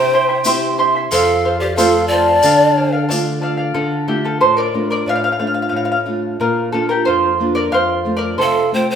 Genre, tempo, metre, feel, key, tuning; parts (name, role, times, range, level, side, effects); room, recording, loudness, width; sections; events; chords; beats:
andean folk, Andean ensemble; 91 BPM; 2/4; straight; D minor; A4 = 438 Hz
breathy mellow pan flute; melody; 0.0-3.0, 8.4-9.0 s; G4 to D5; -16 LUFS; equal
breathy large quena; second line; 0.0-3.0, 8.4-9.0 s; D5 to A5; -19 LUFS; left 1 dB
charango; accompaniment; 0.0-8.9 s; E4 to C6; -17 LUFS; right 1 dB
nylon-string guitar; accompaniment; 0.0-9.0 s; F2 to G4; -20 LUFS; right 1 dB
tube shaker; percussion; 0.4-3.3 s; -24 LUFS; left 2 dB
wet stone room reverb, RT60 1.3 s; band playing live in one room; -14 LUFS; side -8 dB against mid
0.0-3.7 A section; 3.7-9.0 B section
charango solo 3.7-9.0
0.0 C; 1.1 F; 2.4 Dm; 6.4 Bb; 7.7 F
0.44 | 1.10 1.76 | 2.42 3.08 | 3.75 4.41 | 5.07 5.74 | 6.40 7.06 | 7.73 8.39